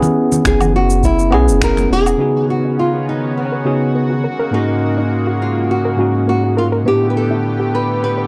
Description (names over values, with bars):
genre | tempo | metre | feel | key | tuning
sunset chillout | 103 BPM | 4/4 | swing 54% on 16ths | unclear | A4 = 440 Hz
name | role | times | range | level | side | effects
tine electric piano | accompaniment | 0.0-8.3 s | Ab2 to Ab4 | -19 LUFS | equal | none
electronic shaker, finger snaps and woodblock | drums | 0.0-2.2 s | none | -23 LUFS | equal | overdrive
congas | percussion | 0.0-1.9 s | none | -23 LUFS | equal | none
flamenco guitar | melody | 0.5-8.3 s | Db4 to B4 | -21 LUFS | equal | tape echo
round analog bass | bass | 0.5-2.1 s | Fb1 to Cb2 | -18 LUFS | equal | none
electronic kick drum | drums | 0.5-1.7 s | none | -22 LUFS | equal | none
lush unison pad | sustained chords | 2.2-8.3 s | Db3 to G4 | -26 LUFS | equal | chorus
soft round pluck | arpeggios | 2.2-8.3 s | Bb3 to Cb5 | -27 LUFS | equal | chorus, tape echo
room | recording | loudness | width
light reverb | dry, gritty hardware recording, transformer saturation, cassette tape | -16 LUFS | mono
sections
0.0-2.2 A section; 2.2-8.3 B section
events
band accent 1.6; filter sweep on synth arpeggio sound 2.2-8.3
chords
0.0 Gb9sus4; 2.2 Db9sus4; 4.2 Ab9sus4; 6.9 A9sus4